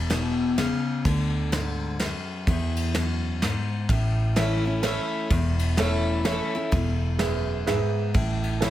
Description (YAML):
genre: honky-tonk and classic country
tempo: 127 BPM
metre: 3/4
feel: swing 61% on 8ths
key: A major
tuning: A4 = 440 Hz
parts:
  - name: picked steel-string acoustic guitar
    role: accompaniment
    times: 0.0-8.7 s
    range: E2 to E4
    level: -27 LUFS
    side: left 2 dB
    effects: none
  - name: vintage muted fingered electric bass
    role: bass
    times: 0.0-8.7 s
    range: E1 to E2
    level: -26 LUFS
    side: right 1 dB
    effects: none
  - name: soft brush drum kit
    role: drums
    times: 0.1-8.7 s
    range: kick drum, ride cymbal, snare drum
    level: -29 LUFS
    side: equal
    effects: none
  - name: clear upright piano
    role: accompaniment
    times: 4.4-8.7 s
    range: G#4 to E5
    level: -29 LUFS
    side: right 6 dB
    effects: none
room: light reverb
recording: none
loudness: -22 LUFS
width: side -13 dB against mid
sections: 0.0-8.7 A section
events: none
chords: 0.0 A (rootless); 1.1 D; 2.5 E; 3.9 A; 6.7 E; 8.2 A